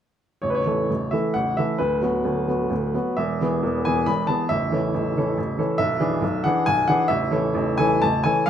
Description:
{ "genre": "classical, romantic triple-time dance for piano with dotted rhythms", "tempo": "120-150 BPM", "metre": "3/4", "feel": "rubato", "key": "A major", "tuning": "A4 = 440 Hz", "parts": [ { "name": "clear baby grand piano", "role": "solo", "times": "0.4-8.5 s", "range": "A0 to B5", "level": "-20 LUFS", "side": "equal", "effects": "none" } ], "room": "wet stone room reverb, RT60 1.1 s", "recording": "minimal, uncompressed stereo recording", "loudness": "-20 LUFS", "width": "side -9 dB against mid", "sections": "0.4-8.5 A section", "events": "none", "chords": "0.4 A; 1.8 Bm/D; 3.2 E; 4.5 A; 5.8 E7/B; 7.1 A" }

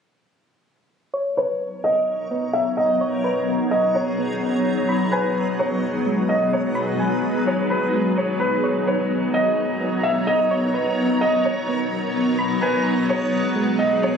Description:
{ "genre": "hip hop", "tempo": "128 BPM", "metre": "4/4", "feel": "half-time", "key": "B major", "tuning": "A4 = 444 Hz", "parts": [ { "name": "granular cloud pad", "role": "sustained chords", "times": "1.9-14.2 s", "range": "F#3 to A#5", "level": "-22 LUFS", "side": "left 1 dB", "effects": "built-in reverb, low-pass filter" }, { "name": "soft round pluck", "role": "arpeggios", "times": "1.1-14.2 s", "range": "G#3 to B5", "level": "-29 LUFS", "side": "right 2 dB", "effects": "chorus, low-pass filter, tape echo" }, { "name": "backwards swelling texture", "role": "texture", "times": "1.9-14.2 s", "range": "G#3 to D#5", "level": "-31 LUFS", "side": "right 1 dB", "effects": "built-in reverb" }, { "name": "felt-muted upright piano", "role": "melody", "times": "1.4-14.2 s", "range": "B4 to E5", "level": "-22 LUFS", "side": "equal", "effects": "low-pass filter, tape echo" } ], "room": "moderate lush hall reverb, RT60 2.8 s", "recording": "recorded on a phone in the room, studio ambience", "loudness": "-19 LUFS", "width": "side -6 dB against mid", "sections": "1.1-14.2 A section", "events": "filter sweep 1.1-14.2", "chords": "1.1 Bmaj9; 4.9 G#m7; 8.6 Bmaj9; 12.4 G#m7" }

